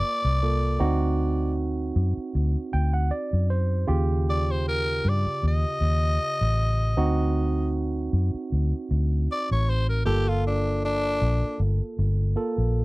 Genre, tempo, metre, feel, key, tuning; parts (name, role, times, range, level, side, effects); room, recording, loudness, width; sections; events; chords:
straight-eighth soul blues; 78 BPM; 4/4; swing 54% on 16ths; A4 = 440 Hz
growling tenor saxophone; melody; 0.0-11.6 s; D4 to Eb5; -28 LUFS; left 1 dB
barky tine electric piano; accompaniment; 0.0-12.8 s; Db3 to G5; -29 LUFS; right 3 dB
vintage muted fingered electric bass; bass; 0.2-12.8 s; G1 to G2; -23 LUFS; equal
little or no reverb; dry, close 1970s-style studio recording; -22 LUFS; side -21 dB against mid
0.0-12.8 A section
tine electric piano fill 2.3-3.9
0.0 Gm7 (rootless); 0.8 D7b9; 3.9 Eb7; 7.0 D7b9; 10.1 Gm7